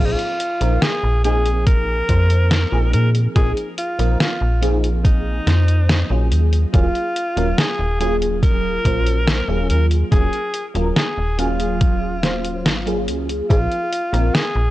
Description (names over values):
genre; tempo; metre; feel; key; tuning
vaporwave; 71 BPM; 4/4; straight; Eb dorian; A4 = 438 Hz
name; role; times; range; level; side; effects
edgy alto saxophone; melody; 0.0-14.7 s; Eb4 to Bb4; -24 LUFS; equal; tape echo
FM electric piano with soft pad layer; accompaniment; 0.0-14.3 s; F3 to C5; -24 LUFS; equal; phaser, ensemble chorus
slap-like FM bass; bass; 0.0-14.7 s; Eb1 to Bb2; -18 LUFS; equal; none
detuned 8-bit digital drum machine; drums; 0.2-14.5 s; hi-hat, snare drum; -21 LUFS; equal; vintage 12-bit sampler grit
electronic kick drum; drums; 1.7-13.7 s; none; -16 LUFS; equal; vintage 12-bit sampler grit
room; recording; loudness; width
digital ambience; dry, gritty hardware recording, cassette tape; -16 LUFS; side -16 dB against mid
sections
0.0-14.7 A section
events
none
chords
0.0 Bb7sus4; 6.3 Ebm11; 13.5 Bb7sus4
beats
0.82 1.67 2.51 | 3.36 4.20 5.05 5.89 | 6.74 7.58 8.43 9.28 | 10.12 10.96 11.81 12.65 | 13.50 14.35